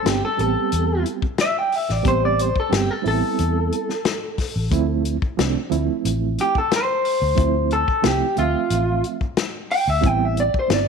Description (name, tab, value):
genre	straight-eighth soul blues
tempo	90 BPM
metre	4/4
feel	straight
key	A minor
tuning	A4 = 440 Hz
part	electric guitar through a small old amp	melody	0.0-10.9 s	F4 to G5	-21 LUFS	left 1 dB	none
part	reed electric piano	accompaniment	0.0-10.9 s	F3 to E5	-24 LUFS	right 13 dB	fast tremolo
part	vintage muted fingered electric bass	bass	0.1-10.9 s	G1 to E2	-23 LUFS	left 1 dB	none
part	warm soul drum kit	drums	0.1-10.9 s	hi-hat, kick drum, snare drum	-24 LUFS	left 4 dB	none
room	light reverb, studio reverb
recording	1960s-style stereo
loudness	-18 LUFS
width	side -6 dB against mid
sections	0.0-10.9 A section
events	clean electric guitar solo 0.0-10.9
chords	0.0 Am9; 4.7 Dm9; 10.0 Am9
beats	0.05 0.71 1.38 | 2.05 2.72 3.38 4.05 | 4.72 5.38 6.05 6.71 | 7.38 8.04 8.71 9.38 | 10.04 10.71